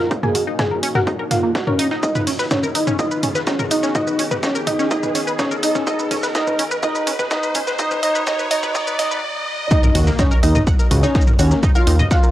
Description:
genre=melodic techno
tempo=125 BPM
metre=4/4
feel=straight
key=Eb minor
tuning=A4 = 440 Hz
part: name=expressive portamento lead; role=melody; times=0.0-12.3 s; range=Db4 to Ab4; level=-23 LUFS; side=equal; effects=chorus, tape echo
part: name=glassy wavetable pluck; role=second line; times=0.0-12.3 s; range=Db5 to Ab5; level=-26 LUFS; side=right 2 dB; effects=chorus, sidechain pumping, analog delay
part: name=deep dark ambient pad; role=sustained chords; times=0.0-12.3 s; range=Eb3 to Eb5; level=-31 LUFS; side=left 1 dB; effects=chorus, built-in reverb, sidechain pumping
part: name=tight sequenced synth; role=arpeggios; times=0.0-12.3 s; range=Bb3 to Gb5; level=-24 LUFS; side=equal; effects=chorus, sidechain pumping, analog delay
part: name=riser and impact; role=sound effects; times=0.4-11.6 s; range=none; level=-27 LUFS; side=equal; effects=none
part: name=dusty soul sampler-style drum kit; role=drums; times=0.1-12.2 s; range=hi-hat, snare drum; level=-32 LUFS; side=equal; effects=high-pass filter on hats, high-pass filter on snare, high-pass filter on room
part: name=electronic kick drum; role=drums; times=0.1-12.2 s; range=none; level=-18 LUFS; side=equal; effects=overdrive, high-pass filter on kick, high-pass filter on room
part: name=punchy analog drum machine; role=drums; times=0.2-12.3 s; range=hi-hat, shaker, toms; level=-25 LUFS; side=equal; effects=sidechain pumping on toms, sidechain pumping on hats, sidechain pumping on perc
part: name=fat analog bass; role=bass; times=9.9-12.0 s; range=Db2 to Eb2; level=-15 LUFS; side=equal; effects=sidechain pumping
room=light reverb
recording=dry, gritty hardware recording, transformer saturation, high-pass filter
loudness=-16 LUFS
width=side -14 dB against mid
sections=0.0-9.7 A section; 9.7-12.3 B section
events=build-up 0.0-9.7; filter sweep on analog synth lead 0.0-9.7; filter sweep on synth pluck 0.0-9.7; filter sweep 0.0-9.7; riser 0.4-9.7; stop 9.2-9.7; drop 9.7-12.3; impact 9.7-11.6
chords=0.0 Ebm; 2.0 Abm/Eb; 5.9 B/D#; 9.7 Ebm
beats=| 0.11 0.59 1.07 1.55 | 2.03 2.51 2.99 3.47 | 3.95 4.43 4.91 5.39 | 5.87 6.35 6.83 7.31 | 7.79 8.27 8.75 9.23 | 9.71 10.19 10.67 11.15 | 11.63 12.11

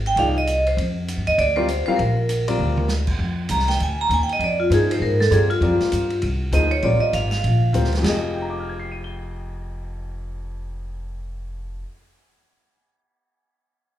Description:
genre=modal jazz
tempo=198 BPM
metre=4/4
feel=swing 62% on 8ths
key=F dorian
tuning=A4 = 440 Hz
part: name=upright bass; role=bass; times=0.0-11.8 s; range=F1 to Ab2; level=-23 LUFS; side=equal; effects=none
part: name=vibraphone with medium hard mallets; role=melody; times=0.1-7.7 s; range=F4 to Bb5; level=-21 LUFS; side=right 1 dB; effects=none
part: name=vintage drum kit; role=drums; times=0.1-8.1 s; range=crash cymbal, hi-hat, kick drum, ride cymbal, snare drum, toms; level=-30 LUFS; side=right 2 dB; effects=none
part: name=warm baby grand piano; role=accompaniment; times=0.2-12.3 s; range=F2 to G7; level=-26 LUFS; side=left 3 dB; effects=none
room=wet large studio reverb, RT60 0.8 s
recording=heard from further back in the room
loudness=-18 LUFS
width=side -12 dB against mid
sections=0.0-3.2 A section; 3.2-8.0 B section; 8.0-10.4 C section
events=drum fill 2.6-2.9; vibraphone solo 3.2-8.0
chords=0.0 Fm7; 0.8 Gm; 3.2 Fm9; 5.6 Gm; 8.0 Fm9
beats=0.17 0.47 | 0.77 1.07 1.38 1.68 | 1.98 2.28 2.59 2.89 | 3.19 3.49 3.80 4.10 | 4.40 4.70 5.01 5.31 | 5.61 5.91 6.22 6.52 | 6.82 7.12 7.43 7.73 | 8.03 8.33 8.63 8.94 | 9.24 9.54 9.85 10.15

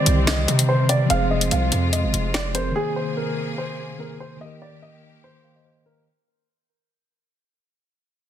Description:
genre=hip hop, drill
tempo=145 BPM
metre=4/4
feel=half-time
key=unclear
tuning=A4 = 438 Hz
part: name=dark baby grand piano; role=melody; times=0.0-6.0 s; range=Ab4 to F5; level=-26 LUFS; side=right 1 dB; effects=ping-pong delay
part: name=mellow tine electric piano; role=accompaniment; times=0.0-6.1 s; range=D3 to F5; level=-27 LUFS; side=equal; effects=medium stereo tremolo
part: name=clear symphonic string section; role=sustained chords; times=0.0-6.0 s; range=C3 to Ab4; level=-30 LUFS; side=left 1 dB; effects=none
part: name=distorted 808-style bass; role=bass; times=0.1-2.7 s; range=F1 to C3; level=-21 LUFS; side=right 1 dB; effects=distortion
part: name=drill drum kit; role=drums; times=0.1-2.6 s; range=finger snaps, hi-hat, snare drum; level=-23 LUFS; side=left 1 dB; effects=overdrive
room=light reverb, studio reverb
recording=dense, heavily limited modern master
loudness=-19 LUFS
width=side -10 dB against mid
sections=0.0-6.1 A section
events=fade-out 0.0-6.1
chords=0.0 Cmadd9; 1.1 Fm; 2.8 Abadd9; 4.4 Eb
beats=0.27 0.69 | 1.10 1.51 1.93 2.34 | 2.75 3.17 3.58 4.00 | 4.41 4.82 5.24 5.65

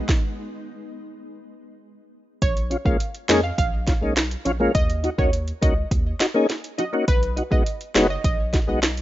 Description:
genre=dancehall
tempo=103 BPM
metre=4/4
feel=straight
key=Bb phrygian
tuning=A4 = 440 Hz
part: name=saturated sub bass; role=bass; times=0.0-9.0 s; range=F#1 to F2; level=-27 LUFS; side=equal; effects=none
part: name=afro-pop drum kit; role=drums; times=0.1-9.0 s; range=finger snaps, hi-hat, kick drum, snare drum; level=-22 LUFS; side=equal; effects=none
part: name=analog pluck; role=melody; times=2.4-8.7 s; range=B4 to F5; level=-29 LUFS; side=right 1 dB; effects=chorus, ping-pong delay
part: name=tonewheel organ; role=accompaniment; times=2.7-8.8 s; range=Ab3 to Ab4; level=-22 LUFS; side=left 2 dB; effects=chorus vibrato, slow rotary speaker, sidechain pumping
part: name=bongos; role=percussion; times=2.7-9.0 s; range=none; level=-34 LUFS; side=right 4 dB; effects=none
room=little or no reverb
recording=rough home demo mix, nothing above 7.5 kHz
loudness=-19 LUFS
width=side -15 dB against mid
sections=0.0-2.4 A section; 2.4-9.0 B section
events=stop 0.1-2.4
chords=0.1 N.C.; 2.4 Bbm7; 4.7 Ebm7; 7.1 B6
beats=| 0.09 0.67 1.25 1.84 | 2.42 3.00 3.58 4.17 | 4.75 5.33 5.91 6.50 | 7.08 7.66 8.24 8.83

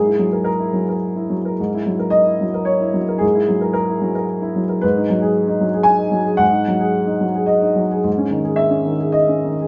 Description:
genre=neoclassical minimalist piano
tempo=109 BPM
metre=3/4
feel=rubato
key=unclear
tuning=A4 = 440 Hz
part: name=dark baby grand piano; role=solo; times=0.0-9.7 s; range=G#2 to G#5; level=-18 LUFS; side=equal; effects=none
room=moderate stone room reverb, RT60 1.1 s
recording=band playing live in one room, nothing above 7.6 kHz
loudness=-18 LUFS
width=mono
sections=0.0-9.7 A section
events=none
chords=0.0 F#7/G#; 4.8 G#m7; 8.1 C#madd9/G#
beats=0.47 1.02 | 1.58 2.13 2.68 | 3.22 3.76 4.29 | 4.83 5.35 5.88 | 6.42 6.96 7.51 | 8.06 8.61 9.17

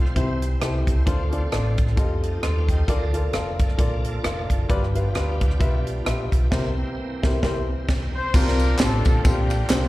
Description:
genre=uptempo gospel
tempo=132 BPM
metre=4/4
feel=swing 57% on 8ths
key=unclear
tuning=A4 = 437 Hz
part: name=bright tonewheel organ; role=sustained chords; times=0.0-9.9 s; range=F3 to F5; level=-36 LUFS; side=right 2 dB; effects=fast rotary speaker, chorus vibrato
part: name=mellow French horn section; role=sustained chords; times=0.0-8.3 s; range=E3 to A4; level=-33 LUFS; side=right 1 dB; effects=none
part: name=fingered electric bass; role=bass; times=0.0-9.9 s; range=F1 to F2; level=-23 LUFS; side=equal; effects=none
part: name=warm baby grand piano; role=accompaniment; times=0.1-9.9 s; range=G2 to C6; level=-29 LUFS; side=left 3 dB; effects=slapback echo
part: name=tight funk drum kit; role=drums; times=0.1-9.8 s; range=crash cymbal, hi-hat, kick drum, ride cymbal, rim click, snare drum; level=-22 LUFS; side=equal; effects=none
part: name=mellow horn section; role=melody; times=8.2-9.9 s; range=Bb3 to C5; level=-26 LUFS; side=left 2 dB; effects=slapback echo
part: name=tambourine and handclaps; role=percussion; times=8.3-9.8 s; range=none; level=-33 LUFS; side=right 2 dB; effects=none
room=small room ambience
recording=live gig heard through the venue's PA, recital hall reverb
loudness=-20 LUFS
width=side -17 dB against mid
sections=0.0-8.3 A section; 8.3-9.9 B section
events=band accent 6.5-8.3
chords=0.2 C; 1.1 Dm7; 2.0 F9; 2.9 Bbmaj7; 4.7 G7; 6.5 C7; 8.3 C9sus4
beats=0.16 0.61 | 1.07 1.52 1.97 2.43 | 2.88 3.34 3.79 4.25 | 4.70 5.16 5.61 6.07 | 6.52 6.98 7.43 7.89 | 8.34 8.79 9.25 9.70

